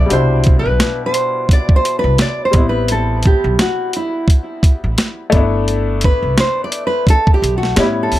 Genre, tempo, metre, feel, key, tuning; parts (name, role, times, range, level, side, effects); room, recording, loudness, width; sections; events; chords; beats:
hip hop, jazz-hop; 86 BPM; 4/4; swing 59% on 16ths; A4 = 440 Hz
nylon-string guitar; melody; 0.0-8.2 s; E4 to D5; -18 LUFS; right 1 dB; tape echo
clear upright piano; accompaniment; 0.0-8.2 s; B2 to E4; -21 LUFS; left 4 dB
upright bass; bass; 0.0-8.2 s; G1 to A2; -18 LUFS; equal
boom bap sampler-style drum kit; drums; 0.1-8.2 s; hi-hat, kick drum, snare drum; -13 LUFS; equal
little or no reverb; -12 LUFS; side -14 dB against mid
0.0-8.2 A section
nylon-string guitar solo 0.0-8.2
0.1 Cmaj7; 2.5 Am7; 5.3 G6
| 0.10 0.80 1.49 2.19 | 2.89 3.59 4.28 4.98 | 5.68 6.38 7.08 7.77